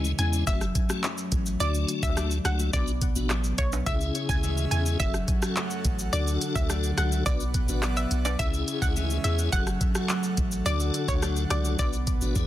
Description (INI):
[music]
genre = dancehall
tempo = 106 BPM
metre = 4/4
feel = straight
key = F# minor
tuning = A4 = 440 Hz
[part]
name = tonewheel organ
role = accompaniment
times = 0.0-12.5 s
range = G#3 to B4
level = -33 LUFS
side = left 6 dB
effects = overdrive, chorus vibrato, fast rotary speaker
[part]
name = clean electric guitar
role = arpeggios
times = 0.0-12.5 s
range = F#2 to D4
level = -33 LUFS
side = right 1 dB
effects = spring reverb, ping-pong delay
[part]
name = punchy sub bass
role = bass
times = 0.0-12.5 s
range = F#1 to E2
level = -28 LUFS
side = equal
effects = none
[part]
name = island pop drum kit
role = drums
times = 0.0-12.5 s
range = handclaps, hi-hat, kick drum, rim click, shaker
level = -28 LUFS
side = equal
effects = soft clipping on snare
[part]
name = maracas and timbales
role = percussion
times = 0.0-12.5 s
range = none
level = -41 LUFS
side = right 2 dB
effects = none
[part]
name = analog pluck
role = melody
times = 0.2-12.2 s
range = C#5 to G#5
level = -33 LUFS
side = equal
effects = chorus, ping-pong delay
[part]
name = airy breathy pad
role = sustained chords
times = 3.9-12.5 s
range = C#3 to F#5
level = -36 LUFS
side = right 1 dB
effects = chorus, sidechain pumping
[sound]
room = digital ambience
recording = dense, heavily limited modern master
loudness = -24 LUFS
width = side -13 dB against mid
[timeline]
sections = 0.0-12.5 A section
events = none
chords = 0.5 F#m; 1.6 D; 2.7 Bm; 3.9 C#m; 5.0 F#m; 6.1 D; 7.3 Bm; 8.4 C#m; 9.5 F#m; 10.7 D; 11.8 Bm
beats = 0.47 1.04 | 1.60 2.17 2.73 3.30 | 3.87 4.43 5.00 5.57 | 6.13 6.70 7.26 7.83 | 8.39 8.96 9.53 10.09 | 10.66 11.22 11.79 12.36